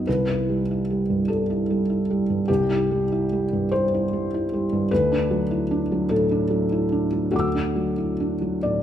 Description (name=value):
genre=neoclassical minimalist piano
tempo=50 BPM (dotted quarters)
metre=6/8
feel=rubato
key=unclear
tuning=A4 = 441 Hz
part: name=felt-muted upright piano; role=solo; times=0.0-8.8 s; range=C2 to E6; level=-20 LUFS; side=equal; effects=none
room=light reverb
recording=minimal, uncompressed stereo recording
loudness=-20 LUFS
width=side -10 dB against mid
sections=0.0-8.8 A section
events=none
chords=0.1 Am7/C; 4.9 Dadd9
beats=| 0.07 1.28 | 2.48 3.72 | 4.91 6.11 | 7.33 8.66